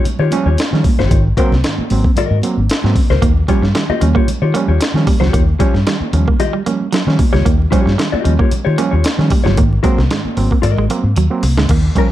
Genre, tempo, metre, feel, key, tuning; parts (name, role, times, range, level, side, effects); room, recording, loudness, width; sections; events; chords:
funk; 114 BPM; 4/4; straight; Eb mixolydian; A4 = 439 Hz
mellow electric guitar; accompaniment; 0.0-12.1 s; F4 to Eb5; -20 LUFS; left 8 dB
congas; percussion; 0.0-12.1 s; -26 LUFS; right 3 dB
vintage muted fingered electric bass; bass; 0.1-11.9 s; G1 to Eb3; -15 LUFS; equal
breakbeat sampler-style drum kit; drums; 0.1-12.1 s; crash cymbal, hi-hat, kick drum, snare drum; -16 LUFS; equal
overdriven reed electric piano; stabs; 0.3-12.1 s; Ab2 to Db4; -20 LUFS; right 4 dB; spring reverb
semi-hollow electric guitar; riff; 3.2-12.1 s; Gb3 to Bb3; -21 LUFS; right 7 dB; spring reverb
little or no reverb; dark, warm production; -12 LUFS; side -13 dB against mid
0.0-11.7 A section
break 0.0-3.2; drum fill 11.2-11.7
0.0 Eb9; 1.1 Ab9; 3.2 Eb9; 9.6 Ab9